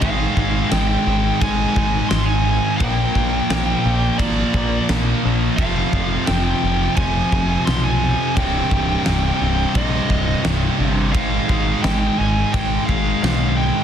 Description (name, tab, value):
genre	heavy metal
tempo	86 BPM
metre	4/4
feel	straight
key	unclear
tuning	A4 = 440 Hz
part	high-gain lead guitar	melody	0.0-13.8 s	D5 to C6	-24 LUFS	right 1 dB	distortion
part	high-gain distorted guitar	riff	0.0-13.8 s	C2 to Bb3	-25 LUFS	right 12 dB	distortion
part	scooped high-gain guitar	riff	0.0-13.8 s	C2 to Bb3	-24 LUFS	left 9 dB	distortion
part	sludgy distorted guitar	riff	0.0-13.8 s	C2 to Bb3	-26 LUFS	right 1 dB	overdrive
part	growling picked electric bass	bass	0.0-13.7 s	C1 to B1	-22 LUFS	equal	overdrive
part	big rock drum kit	drums	0.0-13.4 s	crash cymbal, kick drum, snare drum	-24 LUFS	equal	none
room	light reverb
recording	dense, heavily limited modern master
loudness	-16 LUFS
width	side -9 dB against mid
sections	0.0-13.8 A section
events	none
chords	0.0 Ab5; 2.8 Bb; 5.6 Fm; 8.4 Cm; 11.1 Ab5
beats	| 0.03 0.73 1.42 2.11 | 2.81 3.50 4.19 4.89 | 5.58 6.28 6.97 7.67 | 8.36 9.05 9.75 10.45 | 11.14 11.84 12.53 13.23